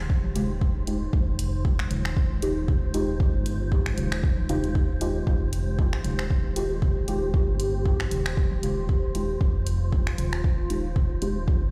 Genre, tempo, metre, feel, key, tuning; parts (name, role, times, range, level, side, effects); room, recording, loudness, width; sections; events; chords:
dub techno; 116 BPM; 4/4; swing 56% on 16ths; A4 = 440 Hz
dark analog pad; sustained chords; 0.0-11.7 s; Ab3 to G4; -36 LUFS; equal; chorus, sidechain pumping
round analog bass; bass; 0.0-11.7 s; Eb1 to G1; -31 LUFS; equal; sidechain pumping
wind-like tuned noise texture; texture; 0.0-11.7 s; C5; -43 LUFS; equal; built-in reverb, sidechain pumping
electronic kick drum; drums; 0.1-11.6 s; -26 LUFS; equal
electronic congas and toms; percussion; 0.2-11.1 s; -38 LUFS; equal; sidechain pumping on perc, sidechain pumping on toms, dub echo
deep mellow chord stab; stabs; 0.4-11.4 s; Ab3 to G4; -35 LUFS; equal; chorus, phaser, dub echo
deep house drum kit; drums; 0.4-11.3 s; finger snaps, hi-hat; -37 LUFS; equal; dub echo
little or no reverb; played on a big sound system in a bare room, stone room reverb; -25 LUFS; mono
0.0-11.7 A section
0.0 Fm9